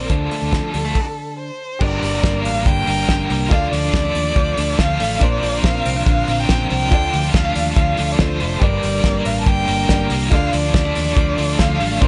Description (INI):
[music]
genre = jangly indie pop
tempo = 141 BPM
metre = 4/4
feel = straight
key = G minor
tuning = A4 = 439 Hz
[part]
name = warm violin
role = melody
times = 0.0-12.1 s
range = A4 to A5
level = -25 LUFS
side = equal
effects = none
[part]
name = biting overdriven guitar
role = accompaniment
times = 0.0-12.1 s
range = G2 to Bb4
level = -28 LUFS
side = equal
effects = tremolo
[part]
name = direct-recorded clean electric guitar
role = arpeggios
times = 0.0-12.1 s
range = G2 to D4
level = -27 LUFS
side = equal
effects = spring reverb
[part]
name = vintage muted fingered electric bass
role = bass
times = 0.0-12.1 s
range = F1 to Eb2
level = -25 LUFS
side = equal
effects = none
[part]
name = cloth-damped thuddy drum kit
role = drums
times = 0.1-12.1 s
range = crash cymbal, hi-hat, kick drum, snare drum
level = -22 LUFS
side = equal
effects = none
[part]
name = clear upright piano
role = accompaniment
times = 1.8-12.1 s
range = C4 to D5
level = -34 LUFS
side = equal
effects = none
[sound]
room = light reverb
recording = nothing above 10.5 kHz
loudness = -18 LUFS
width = mono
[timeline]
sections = 0.0-1.8 A section; 1.8-12.1 B section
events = stop 1.0-1.8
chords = 0.1 Dm; 1.8 Gm; 3.5 Dm; 5.2 Bbadd9; 6.9 Dm; 8.6 Gm; 10.3 Dm